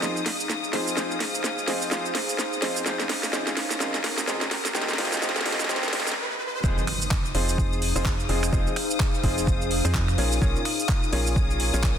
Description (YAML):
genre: piano house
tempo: 127 BPM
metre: 4/4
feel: swing 58% on 16ths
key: F minor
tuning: A4 = 438 Hz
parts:
  - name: warm studio string section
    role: sustained chords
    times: 0.0-12.0 s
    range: Eb6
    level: -34 LUFS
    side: left 8 dB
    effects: sidechain pumping
  - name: bright upright piano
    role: riff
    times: 0.0-11.9 s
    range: Bb2 to Db5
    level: -30 LUFS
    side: equal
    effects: sidechain pumping, dub echo
  - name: organ-like FM bass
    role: bass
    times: 0.0-12.0 s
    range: Eb1 to F2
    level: -27 LUFS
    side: equal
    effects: sidechain pumping, high-pass filter
  - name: garage drum kit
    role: drums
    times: 0.0-11.9 s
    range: finger snaps, handclaps, hi-hat, shaker, snare drum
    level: -27 LUFS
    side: right 1 dB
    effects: soft clipping on snare
  - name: riser and impact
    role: sound effects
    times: 0.7-8.5 s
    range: none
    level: -36 LUFS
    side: right 1 dB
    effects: none
  - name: warbly tape-like pad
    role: texture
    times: 0.0-12.0 s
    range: Db4 to Ab5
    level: -32 LUFS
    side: left 1 dB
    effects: chorus, built-in reverb, sidechain pumping
  - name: electronic kick drum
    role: drums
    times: 6.6-11.9 s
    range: none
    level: -25 LUFS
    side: equal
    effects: overdrive
room: moderate lush hall reverb, RT60 1.8 s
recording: dense, heavily limited modern master, high-pass filter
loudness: -22 LUFS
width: side -9 dB against mid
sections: 0.0-6.6 A section; 6.6-12.0 B section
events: build-up 0.0-6.6; drum fill 0.0-6.2; stop 6.2-6.6; drop 6.6-12.0; impact 6.6-8.5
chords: 0.0 Fm7; 2.6 Bbm7; 4.5 Eb7; 6.6 Fm7; 10.2 Bbm7